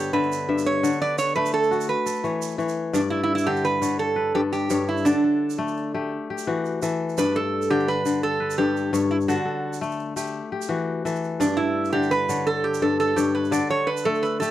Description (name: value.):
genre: west african traditional, West African string and xylophone music.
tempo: 113 BPM (dotted quarters).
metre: 12/8.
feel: straight.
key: G lydian.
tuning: A4 = 440 Hz.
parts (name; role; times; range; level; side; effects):
metal-body resonator slide guitar; melody; 0.0-14.5 s; D4 to D5; -23 LUFS; right 4 dB; none.
kora; arpeggios; 0.0-14.5 s; G2 to E5; -24 LUFS; left 4 dB; none.
egg shaker; percussion; 0.2-14.5 s; none; -38 LUFS; right 12 dB; none.
room: light reverb.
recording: dry, close 1970s-style studio recording.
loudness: -21 LUFS.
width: side -13 dB against mid.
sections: 0.0-2.9 A section; 2.9-14.5 B section.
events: resonator guitar played with a steel bar solo 0.0-2.9.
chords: 0.0 G; 0.8 D; 1.9 E5; 2.9 G; 5.1 D5; 6.1 Em; 7.2 G; 9.3 D; 10.3 Em; 11.4 G; 13.5 D5.